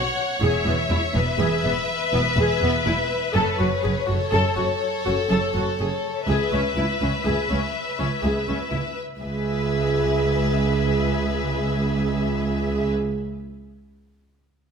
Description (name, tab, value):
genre	cinematic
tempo	82 BPM (dotted quarters)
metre	12/8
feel	straight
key	C# minor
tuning	A4 = 440 Hz
part	rich studio violin section	melody	0.0-12.9 s	C#5 to F#5	-29 LUFS	left 6 dB	none
part	rich symphonic violin section	second line	0.0-12.9 s	A4 to C#5	-27 LUFS	left 2 dB	none
part	rich symphonic viola section	accompaniment	0.0-12.9 s	B3 to A4	-26 LUFS	right 1 dB	none
part	warm studio double bass section	bass	0.0-12.9 s	E1 to C#2	-27 LUFS	right 2 dB	none
part	rich studio cello section	bass	0.4-12.9 s	C#2 to F#2	-26 LUFS	right 2 dB	none
room	moderate scoring stage reverb, RT60 1.5 s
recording	none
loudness	-20 LUFS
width	side -6 dB against mid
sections	0.0-9.2 A section; 9.2-12.1 B section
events	none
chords	0.4 E; 3.3 F#m; 6.3 C#m7